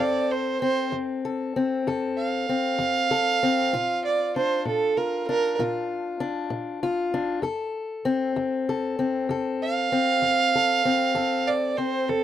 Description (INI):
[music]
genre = acoustic country blues, solo or duo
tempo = 65 BPM (dotted quarters)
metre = 12/8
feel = straight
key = F major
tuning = A4 = 441 Hz
[part]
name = rich fiddle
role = melody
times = 0.0-12.2 s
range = A4 to F5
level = -23 LUFS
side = right 5 dB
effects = none
[part]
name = fingerpicked acoustic archtop guitar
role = accompaniment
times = 0.0-12.2 s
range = F2 to A4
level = -26 LUFS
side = left 4 dB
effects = none
[sound]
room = light reverb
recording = dry, close 1970s-style studio recording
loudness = -22 LUFS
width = side -11 dB against mid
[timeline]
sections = 0.0-12.2 A section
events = none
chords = 0.0 F; 3.7 Bb; 7.4 F